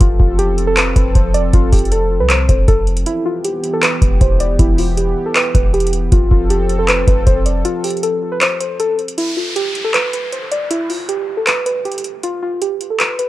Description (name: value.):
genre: hip hop, trap.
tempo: 157 BPM.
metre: 4/4.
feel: half-time.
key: unclear.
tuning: A4 = 443 Hz.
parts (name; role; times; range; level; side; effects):
muted felt-like synth keys; melody; 0.0-13.3 s; E4 to D5; -18 LUFS; equal; chorus, tape echo.
warm analog pad; sustained chords; 0.0-9.1 s; E3 to A4; -23 LUFS; equal; chorus.
warm 808-style bass; bass; 0.0-7.6 s; E1 to C2; -16 LUFS; equal; none.
booming analog drum machine; drums; 0.0-13.3 s; handclaps, hi-hat, kick drum; -15 LUFS; equal; overdrive.
downlifter; sound effects; 9.2-12.2 s; none; -27 LUFS; equal; none.
room: little or no reverb.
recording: dry, gritty hardware recording.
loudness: -13 LUFS.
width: side -16 dB against mid.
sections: 0.0-9.2 A section; 9.2-13.3 B section.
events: break 3.1-3.8, 7.6-9.2, 9.2-13.3.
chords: 0.0 F; 3.1 Em; 6.1 F; 9.2 N.C..